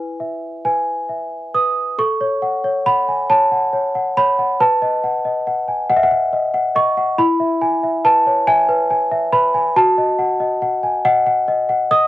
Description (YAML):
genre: classical, lullaby for celesta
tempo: 46 BPM (dotted quarters)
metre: 6/8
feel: straight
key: E major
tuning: A4 = 441 Hz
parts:
  - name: worn celesta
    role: solo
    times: 0.0-12.1 s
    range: E4 to D#6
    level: -15 LUFS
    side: equal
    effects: cassette tape
room: little or no reverb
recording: home recording on cassette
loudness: -15 LUFS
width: side -15 dB against mid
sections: 0.0-2.0 A section; 2.0-12.1 B section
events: none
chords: 0.0 E; 2.0 F#m/A; 4.6 B7; 7.2 E; 9.8 D#dim/F#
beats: 0.64 | 1.99 3.29 | 4.60 5.90 | 7.19 8.48 | 9.76 11.05